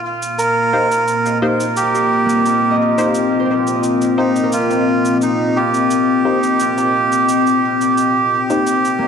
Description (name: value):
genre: ambient dub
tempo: 87 BPM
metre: 4/4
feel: straight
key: unclear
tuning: A4 = 439 Hz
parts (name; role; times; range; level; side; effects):
- deep dark ambient pad; sustained chords; 0.3-9.1 s; Bb2 to Eb5; -18 LUFS; left 3 dB; chorus, built-in reverb
- shaker; drums; 0.2-9.0 s; none; -31 LUFS; right 2 dB; studio reverb, dub echo
- melodica; melody; 0.4-9.1 s; Eb4 to Bb4; -16 LUFS; right 3 dB; diffuse ambient delay
- filtered dub chord stab; stabs; 0.7-9.1 s; Bb3 to C5; -23 LUFS; left 2 dB; analog chorus, dub echo
- concert harp; arpeggios; 1.8-9.1 s; Bb3 to Eb5; -24 LUFS; left 1 dB; diffuse ambient delay
room: wet plate reverb, RT60 1.6 s, studio reverb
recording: dreamy mix soaked in reverb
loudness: -13 LUFS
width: side -7 dB against mid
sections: 0.0-9.1 A section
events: filter sweep on ambient pad 0.0-9.1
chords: 0.0 Cm7/Bb